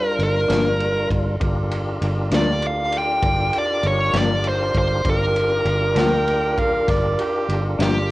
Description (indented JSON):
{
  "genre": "slow blues",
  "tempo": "66 BPM (dotted quarters)",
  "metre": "12/8",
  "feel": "straight",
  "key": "G minor",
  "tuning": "A4 = 440 Hz",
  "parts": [
    { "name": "dark smooth lead guitar", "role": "melody", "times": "0.0-8.1 s", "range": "G4 to G5", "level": "-21 LUFS", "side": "equal", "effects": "overdrive, cassette tape" },
    { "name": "tonewheel organ", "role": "sustained chords", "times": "0.0-8.1 s", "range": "G3 to Bb4", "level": "-26 LUFS", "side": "equal", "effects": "slow rotary speaker" },
    { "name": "fingered electric bass", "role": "bass", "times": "0.2-8.1 s", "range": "G1 to D2", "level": "-23 LUFS", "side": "equal", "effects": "none" },
    { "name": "raw garage drum kit", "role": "drums", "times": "0.2-7.9 s", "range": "kick drum, ride cymbal, snare drum", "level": "-28 LUFS", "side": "equal", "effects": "none" },
    { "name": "electric guitar through a small old amp", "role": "accompaniment", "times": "0.5-8.0 s", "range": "G2 to D4", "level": "-23 LUFS", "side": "left 3 dB", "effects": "tremolo" },
    { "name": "warm harmonica", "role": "second line", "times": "6.0-7.6 s", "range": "G4 to G5", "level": "-26 LUFS", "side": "right 3 dB", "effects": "overdrive" }
  ],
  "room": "light reverb, small room ambience",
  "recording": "home recording on cassette",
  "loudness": "-18 LUFS",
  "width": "side -18 dB against mid",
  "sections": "0.0-8.1 A section",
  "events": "none",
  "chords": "0.0 Gm7"
}